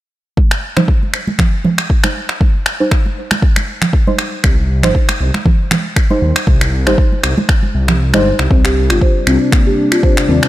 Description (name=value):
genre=afro house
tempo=118 BPM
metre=4/4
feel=swing 55% on 16ths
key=C minor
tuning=A4 = 440 Hz
part: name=electronic kick drum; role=drums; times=0.4-10.1 s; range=none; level=-12 LUFS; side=equal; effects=none
part: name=congas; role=percussion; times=0.4-8.2 s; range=none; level=-18 LUFS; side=right 2 dB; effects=none
part: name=electronic finger snaps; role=drums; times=0.5-10.5 s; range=none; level=-19 LUFS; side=equal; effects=none
part: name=deep mellow chord stab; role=stabs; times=0.8-8.4 s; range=G3 to C5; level=-19 LUFS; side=right 1 dB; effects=chorus, sidechain pumping, digital delay
part: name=dark detuned saw bass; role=bass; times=4.4-10.4 s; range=G1 to Eb2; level=-15 LUFS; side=equal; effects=sidechain pumping
part: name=warm analog pad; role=sustained chords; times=8.5-10.5 s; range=C3 to D4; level=-18 LUFS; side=left 1 dB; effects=chorus, sidechain pumping
part: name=buzzing marimba with soft mallets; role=arpeggios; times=8.5-10.4 s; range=Bb3 to C5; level=-15 LUFS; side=left 2 dB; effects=sidechain pumping, digital delay
room=light reverb, digital ambience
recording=none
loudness=-11 LUFS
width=side -15 dB against mid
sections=0.4-8.5 A section; 8.5-10.5 B section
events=filter sweep on synth stab 0.4-8.5; kick drops out 8.0-8.5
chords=0.4 Cm; 8.5 C5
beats=| 0.37 0.88 1.39 1.90 | 2.41 2.92 3.42 3.93 | 4.44 4.95 5.46 5.97 | 6.48 6.98 7.49 8.00 | 8.51 9.02 9.53 10.04